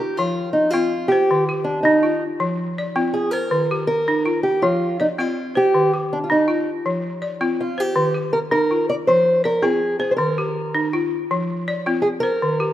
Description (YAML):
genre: west african traditional, West African string and xylophone music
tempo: 108 BPM (dotted quarters)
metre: 12/8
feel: straight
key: F dorian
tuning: A4 = 436 Hz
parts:
  - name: fingerpicked acoustic archtop guitar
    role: melody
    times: 0.0-12.7 s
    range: D4 to D5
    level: -19 LUFS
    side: equal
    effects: none
  - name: balafon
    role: arpeggios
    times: 0.0-12.7 s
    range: Eb3 to D5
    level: -21 LUFS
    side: left 1 dB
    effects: none
room: moderate lush hall reverb, RT60 2.6 s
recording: rough home demo mix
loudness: -18 LUFS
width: side -12 dB against mid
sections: 0.0-12.7 A section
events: none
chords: 0.2 F5; 1.3 Eb; 2.4 F5; 3.5 Eb; 4.6 F5; 5.7 Eb; 6.9 F5; 8.0 Eb; 9.1 Fm; 10.2 Eb; 11.3 F5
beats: | 0.17 0.73 1.29 1.84 | 2.40 2.96 3.51 4.07 | 4.63 5.18 5.74 6.30 | 6.85 7.41 7.96 8.52 | 9.07 9.63 10.19 10.74 | 11.30 11.85 12.41